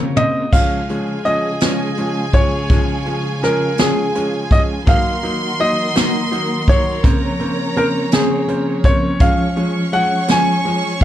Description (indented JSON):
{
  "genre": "six-eight pop ballad",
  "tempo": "55 BPM (dotted quarters)",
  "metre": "6/8",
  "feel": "straight",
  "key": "Db major",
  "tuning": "A4 = 441 Hz",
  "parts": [
    { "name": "warm grand piano", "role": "melody", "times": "0.0-11.0 s", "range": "Ab4 to Ab5", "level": "-20 LUFS", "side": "equal", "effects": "none" },
    { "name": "bright upright piano", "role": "accompaniment", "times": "0.0-11.0 s", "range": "Db3 to Eb4", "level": "-22 LUFS", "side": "right 1 dB", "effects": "none" },
    { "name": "dark studio string section", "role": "sustained chords", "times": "0.0-11.0 s", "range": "C3 to Db5", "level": "-23 LUFS", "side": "equal", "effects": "none" },
    { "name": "jazz brush drum kit", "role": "drums", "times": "0.2-11.0 s", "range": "crash cymbal, hi-hat, kick drum, snare drum, toms", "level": "-16 LUFS", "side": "equal", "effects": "none" },
    { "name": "clear studio violin section", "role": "second line", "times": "0.5-11.0 s", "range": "Ab5 to Db6", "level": "-26 LUFS", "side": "right 1 dB", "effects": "none" }
  ],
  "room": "little or no reverb",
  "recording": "none",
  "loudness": "-14 LUFS",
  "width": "side -12 dB against mid",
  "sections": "0.5-11.0 A section",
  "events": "drum fill 0.0-0.5",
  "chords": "0.0 Bbmadd9; 0.5 Db; 4.9 Ebm; 7.0 Bbmadd9; 9.2 Db"
}